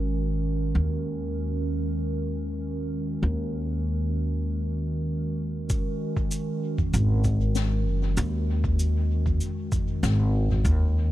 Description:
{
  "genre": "ambient dub",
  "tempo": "97 BPM",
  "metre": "4/4",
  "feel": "straight",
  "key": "unclear",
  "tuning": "A4 = 440 Hz",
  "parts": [
    { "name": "warbly tape-like pad", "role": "sustained chords", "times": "0.0-11.1 s", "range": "Eb3 to Bb4", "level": "-30 LUFS", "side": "right 1 dB", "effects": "chorus, built-in reverb, vintage 12-bit sampler grit" },
    { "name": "upright bass", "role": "bass", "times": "0.0-11.1 s", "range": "Gb1 to Eb2", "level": "-25 LUFS", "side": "equal", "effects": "none" },
    { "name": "electronic kick drum", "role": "drums", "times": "5.7-10.8 s", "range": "none", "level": "-28 LUFS", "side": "equal", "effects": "none" },
    { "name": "soft-mallet drum kit", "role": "drums", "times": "5.7-10.8 s", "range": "cabasa, snare drum, toms", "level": "-32 LUFS", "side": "left 1 dB", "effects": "dub echo" }
  ],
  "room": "studio reverb",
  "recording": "none",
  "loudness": "-24 LUFS",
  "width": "side -15 dB against mid",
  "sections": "0.0-5.7 A section; 5.7-11.1 B section",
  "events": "none",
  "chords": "0.0 Ab5; 0.8 Ebm7; 5.7 Ab5"
}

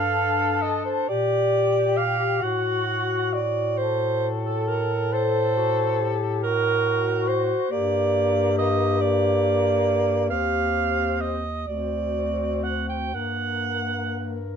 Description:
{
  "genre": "classical, lyrical piece for single-reed quartet",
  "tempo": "37-47 BPM (dotted quarters)",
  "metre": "12/8",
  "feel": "rubato",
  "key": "G minor",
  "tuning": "A4 = 440 Hz",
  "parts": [
    { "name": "dark clarinet", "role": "melody", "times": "0.0-14.6 s", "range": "D4 to Bb4", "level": "-28 LUFS", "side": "left 10 dB", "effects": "none" },
    { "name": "warm alto saxophone", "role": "second line", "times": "0.0-14.4 s", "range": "A4 to G5", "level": "-24 LUFS", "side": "right 5 dB", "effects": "none" },
    { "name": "mellow tenor saxophone", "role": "accompaniment", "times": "0.0-14.4 s", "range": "Bb3 to A4", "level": "-29 LUFS", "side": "left 6 dB", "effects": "none" },
    { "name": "mellow bass clarinet", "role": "bass", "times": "0.0-14.6 s", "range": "D2 to Bb2", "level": "-28 LUFS", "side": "equal", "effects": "none" }
  ],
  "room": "moderate studio reverb, RT60 0.7 s",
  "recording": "minimal, uncompressed stereo recording",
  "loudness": "-21 LUFS",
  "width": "side -7 dB against mid",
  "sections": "0.0-14.6 A section",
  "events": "none",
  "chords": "0.0 Gm; 2.4 Am6; 7.7 Gm; 10.3 Cm/Eb; 11.7 D7; 13.1 Gm"
}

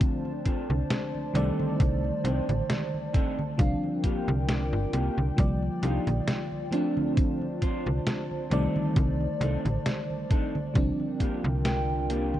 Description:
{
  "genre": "vaporwave",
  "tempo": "67 BPM",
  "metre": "4/4",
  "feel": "swing 54% on 16ths",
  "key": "C dorian",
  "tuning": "A4 = 440 Hz",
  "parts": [
    { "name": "FM electric piano with soft pad layer", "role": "accompaniment", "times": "0.0-12.4 s", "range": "Eb3 to D5", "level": "-31 LUFS", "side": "equal", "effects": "tremolo, analog chorus, tape echo" },
    { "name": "warbly tape-like pad", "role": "sustained chords", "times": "0.0-12.4 s", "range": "Eb3 to A5", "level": "-36 LUFS", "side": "equal", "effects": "chorus, built-in reverb" },
    { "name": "mellow electric guitar", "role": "riff", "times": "0.0-12.4 s", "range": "Bb3 to A5", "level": "-35 LUFS", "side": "equal", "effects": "analog chorus, tape echo" },
    { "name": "detuned 8-bit digital drum machine", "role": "drums", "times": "0.0-12.4 s", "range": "congas, hi-hat, snare drum", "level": "-32 LUFS", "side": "right 1 dB", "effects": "vintage 12-bit sampler grit" },
    { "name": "electronic kick drum", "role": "drums", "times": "0.0-11.4 s", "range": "none", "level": "-25 LUFS", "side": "equal", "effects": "vintage 12-bit sampler grit" },
    { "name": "slap-like FM bass", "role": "bass", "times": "0.7-12.4 s", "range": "G1 to C2", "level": "-28 LUFS", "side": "equal", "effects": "none" }
  ],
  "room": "light reverb",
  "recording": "dark, warm production, cassette tape",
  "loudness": "-25 LUFS",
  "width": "side -13 dB against mid",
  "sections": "0.0-12.4 A section",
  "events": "clean electric guitar fill 2.7-5.4, 11.2-12.4",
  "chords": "0.0 Dm7; 1.4 Cm69; 3.6 Bb6/C; 5.4 Ebmaj9/C; 6.7 Dm7; 8.5 Cm69; 10.8 Bb6/C"
}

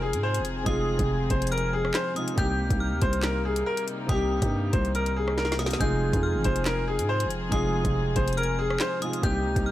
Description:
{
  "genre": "hip hop, drill",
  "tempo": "140 BPM",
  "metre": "4/4",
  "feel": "half-time",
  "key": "F minor",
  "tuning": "A4 = 441 Hz",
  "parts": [
    { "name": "bright upright piano", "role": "melody", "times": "0.0-9.7 s", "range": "G4 to C5", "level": "-29 LUFS", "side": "left 1 dB", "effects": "digital delay" },
    { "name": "metallic FM bell", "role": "second line", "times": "0.0-9.7 s", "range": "Eb6 to G6", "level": "-36 LUFS", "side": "left 1 dB", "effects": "chorus, digital delay" },
    { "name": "dark concert grand piano", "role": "accompaniment", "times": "0.0-9.7 s", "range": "C3 to G4", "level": "-32 LUFS", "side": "right 1 dB", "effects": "none" },
    { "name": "dark studio string section", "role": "sustained chords", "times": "0.0-9.7 s", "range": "C3 to Ab4", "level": "-34 LUFS", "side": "left 2 dB", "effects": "none" },
    { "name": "growling 808-style bass", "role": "bass", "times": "0.0-9.7 s", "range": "F1 to Ab2", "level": "-28 LUFS", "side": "equal", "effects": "none" },
    { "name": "drill drum kit", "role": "drums", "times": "0.1-9.7 s", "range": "handclaps, hi-hat, kick drum, rim click, snare drum", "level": "-29 LUFS", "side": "equal", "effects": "overdrive" }
  ],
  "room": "little or no reverb",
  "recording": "none",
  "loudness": "-23 LUFS",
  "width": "side -14 dB against mid",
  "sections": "0.0-9.7 A section",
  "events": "drum fill 5.4-5.8",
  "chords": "0.0 Fm7; 2.4 Cm7; 5.8 Fm7"
}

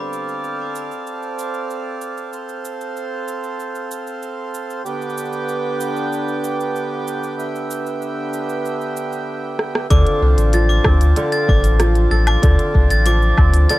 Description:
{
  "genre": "folktronica",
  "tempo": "95 BPM",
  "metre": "4/4",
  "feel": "straight",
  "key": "D dorian",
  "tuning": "A4 = 438 Hz",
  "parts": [
    { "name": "hand-pumped harmonium", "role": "sustained chords", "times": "0.0-13.8 s", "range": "D3 to A5", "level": "-24 LUFS", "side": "right 2 dB", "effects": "none" },
    { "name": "kora", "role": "arpeggios", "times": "0.0-0.9, 9.9-13.8 s", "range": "D3 to A4", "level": "-21 LUFS", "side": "left 1 dB", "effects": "vintage 12-bit sampler grit, ping-pong delay" },
    { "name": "organic electronic drum kit", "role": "drums", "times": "0.1-13.8 s", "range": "cabasa, hi-hat, rim click, woodblock", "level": "-25 LUFS", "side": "equal", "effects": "none" },
    { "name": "glockenspiel with brass mallets", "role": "second line", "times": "9.9-13.8 s", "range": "D6 to A6", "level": "-24 LUFS", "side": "equal", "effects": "ping-pong delay" },
    { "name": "warm sub bass", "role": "bass", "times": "9.9-13.7 s", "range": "A1 to D2", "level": "-14 LUFS", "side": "equal", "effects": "none" },
    { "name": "electronic kick drum", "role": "drums", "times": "9.9-13.5 s", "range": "none", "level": "-16 LUFS", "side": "equal", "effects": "none" }
  ],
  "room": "small room reverb",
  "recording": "dark, warm production",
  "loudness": "-17 LUFS",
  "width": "side -17 dB against mid",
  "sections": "0.0-9.9 A section; 9.9-13.8 B section",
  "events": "drum fill 9.6-9.9",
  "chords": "0.0 Dm7; 4.9 G/D; 9.9 Dm7"
}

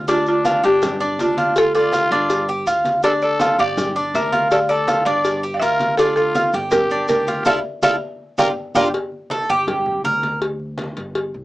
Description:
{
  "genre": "latin, Cuban son and guajira",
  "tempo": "163 BPM",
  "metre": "4/4",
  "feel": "straight",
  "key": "unclear",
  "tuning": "A4 = 440 Hz",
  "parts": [
    { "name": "Cuban tres", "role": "arpeggios", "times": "0.0-10.4 s", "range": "D4 to D5", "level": "-19 LUFS", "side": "right 1 dB", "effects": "none" },
    { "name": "upright bass", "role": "bass", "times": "0.0-11.4 s", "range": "G1 to D2", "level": "-32 LUFS", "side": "equal", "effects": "none" },
    { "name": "buzzing marimba with hard mallets", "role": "melody", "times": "0.1-8.9 s", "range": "F4 to G5", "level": "-20 LUFS", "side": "equal", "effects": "none" },
    { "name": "growling trumpet", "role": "second line", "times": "0.1-8.8 s", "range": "D4 to D5", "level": "-23 LUFS", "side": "left 1 dB", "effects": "none" },
    { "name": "congas", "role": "percussion", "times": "0.1-11.4 s", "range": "none", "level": "-30 LUFS", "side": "equal", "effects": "none" },
    { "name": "cowbell", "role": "percussion", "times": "0.1-11.3 s", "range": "none", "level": "-26 LUFS", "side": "left 1 dB", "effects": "none" },
    { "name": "maracas", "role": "percussion", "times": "0.1-8.8 s", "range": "none", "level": "-37 LUFS", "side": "right 2 dB", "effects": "none" }
  ],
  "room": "light reverb",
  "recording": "small speaker sound",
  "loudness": "-16 LUFS",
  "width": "side -18 dB against mid",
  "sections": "0.0-8.9 A section; 8.9-11.4 B section",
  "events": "band accent 7.5-8.9; drum fill 8.2-8.9; Cuban tres solo 8.9-11.4",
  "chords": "0.0 G5; 7.5 Dmadd9; 8.2 Gm7; 8.9 Gsus2; 9.7 G5"
}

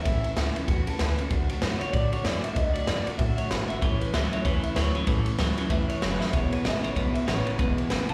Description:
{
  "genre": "rockabilly",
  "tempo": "191 BPM",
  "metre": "4/4",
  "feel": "swing 60% on 8ths",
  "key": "A major",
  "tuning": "A4 = 440 Hz",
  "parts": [
    { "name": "electric guitar through a small old amp", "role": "melody", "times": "0.0-8.1 s", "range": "F#4 to B5", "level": "-35 LUFS", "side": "equal", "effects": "subtle chorus, slapback echo, analog delay" },
    { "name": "picked steel-string acoustic guitar", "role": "accompaniment", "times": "0.0-8.1 s", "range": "E2 to F#4", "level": "-36 LUFS", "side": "equal", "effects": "slapback echo" },
    { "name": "upright bass", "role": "bass", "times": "0.1-8.1 s", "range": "E1 to A2", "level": "-32 LUFS", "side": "equal", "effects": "none" },
    { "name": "raw garage drum kit", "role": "drums", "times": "0.1-8.1 s", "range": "kick drum, ride cymbal, snare drum", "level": "-30 LUFS", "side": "equal", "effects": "none" },
    { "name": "electric guitar at the edge of break-up", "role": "riff", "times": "3.8-8.1 s", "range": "E2 to F#3", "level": "-32 LUFS", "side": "equal", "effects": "slapback echo" }
  ],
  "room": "little or no reverb",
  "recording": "live gig heard through the venue's PA, club reverb",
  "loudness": "-26 LUFS",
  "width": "mono",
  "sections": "0.0-8.1 A section",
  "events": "clean electric guitar solo 0.0-8.1; drum fill 6.2",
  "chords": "0.0 A; 1.3 D; 3.8 A; 6.3 E"
}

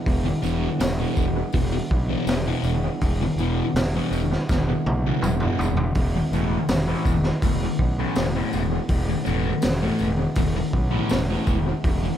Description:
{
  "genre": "psychedelic rock",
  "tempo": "82 BPM",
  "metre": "4/4",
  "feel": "straight",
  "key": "E dorian",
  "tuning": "A4 = 440 Hz",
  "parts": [
    { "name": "percussive tonewheel organ", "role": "sustained chords", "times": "0.0-12.2 s", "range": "E3 to E4", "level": "-34 LUFS", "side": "right 5 dB", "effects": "none" },
    { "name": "pedal harmonium", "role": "drone", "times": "0.0-12.2 s", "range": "E2 to B2", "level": "-36 LUFS", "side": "right 1 dB", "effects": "stereo widening" },
    { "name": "fuzz fingered electric bass", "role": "bass", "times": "0.1-12.1 s", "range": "E1 to B1", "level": "-26 LUFS", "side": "equal", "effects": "overdrive" },
    { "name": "raw garage drum kit", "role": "drums", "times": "0.1-12.0 s", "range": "hi-hat, kick drum, snare drum, toms", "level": "-25 LUFS", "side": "equal", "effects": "analog delay" },
    { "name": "thick fuzz guitar", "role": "riff", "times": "0.2-12.1 s", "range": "E2 to A3", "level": "-25 LUFS", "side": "left 1 dB", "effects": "distortion, phaser, analog delay" },
    { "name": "tambourine", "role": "percussion", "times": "0.4-11.6 s", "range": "none", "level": "-44 LUFS", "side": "left 7 dB", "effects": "none" }
  ],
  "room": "light reverb, small room ambience",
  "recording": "echo-heavy mix",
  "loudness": "-20 LUFS",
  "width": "side -10 dB against mid",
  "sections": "0.0-12.2 A section",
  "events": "drum fill 4.5-6.0",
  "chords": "0.0 Em7; 6.0 A/E"
}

